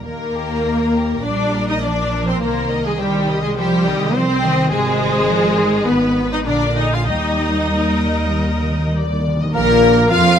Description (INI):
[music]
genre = classical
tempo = 95-110 BPM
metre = 4/4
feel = rubato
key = Eb major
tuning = A4 = 440 Hz
[part]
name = warm symphonic violin section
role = melody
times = 0.0-10.4 s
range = G4 to F5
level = -27 LUFS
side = left 4 dB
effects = none
[part]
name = rich symphonic violin section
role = second line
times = 0.0-10.4 s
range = G4 to F5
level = -22 LUFS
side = left 3 dB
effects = none
[part]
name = rich studio viola section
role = accompaniment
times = 0.0-10.4 s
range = G3 to F4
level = -19 LUFS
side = equal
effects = none
[part]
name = rich symphonic double bass section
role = bass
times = 0.0-10.4 s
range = Ab1 to F2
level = -23 LUFS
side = right 2 dB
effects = none
[part]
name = rich symphonic cello section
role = bass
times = 1.2-10.4 s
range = Bb2 to G3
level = -23 LUFS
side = right 2 dB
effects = none
[part]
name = timpani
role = percussion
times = 7.1-9.5 s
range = Eb3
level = -24 LUFS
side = right 1 dB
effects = none
[part]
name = dark cor anglais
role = second line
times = 9.5-10.4 s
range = Bb4 to F5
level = -22 LUFS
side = equal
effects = none
[part]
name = mellow clarinet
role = second line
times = 9.5-10.4 s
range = Bb3 to F4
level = -24 LUFS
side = right 1 dB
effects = none
[part]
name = mellow hollow small flute group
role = second line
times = 9.5-10.4 s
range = Bb4 to F5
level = -19 LUFS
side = left 7 dB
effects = none
[part]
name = mellow bassoon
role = accompaniment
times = 9.5-10.4 s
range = Bb3 to F4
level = -23 LUFS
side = equal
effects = none
[part]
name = mellow French horn section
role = sustained chords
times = 9.5-10.4 s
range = Bb3 to F4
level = -24 LUFS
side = left 3 dB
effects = none
[part]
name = warm trombone section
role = sustained chords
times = 9.5-10.4 s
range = Bb2 to F3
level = -22 LUFS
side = right 5 dB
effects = none
[part]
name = dark tuba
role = bass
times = 9.5-10.4 s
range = Bb1 to F2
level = -20 LUFS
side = right 4 dB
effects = none
[part]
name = bright trumpet section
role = stabs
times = 9.6-10.4 s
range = Bb4 to F5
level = -22 LUFS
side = left 1 dB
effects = none
[sound]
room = moderate scoring stage reverb, RT60 1.8 s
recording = none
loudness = -15 LUFS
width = side -8 dB against mid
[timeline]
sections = 0.0-9.5 A section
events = timpani fill 7.1-9.5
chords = 0.0 Eb; 1.2 Bb; 2.4 Cm; 4.7 Ab6; 5.9 Abm; 6.5 Bb; 7.1 Eb; 9.5 N.C.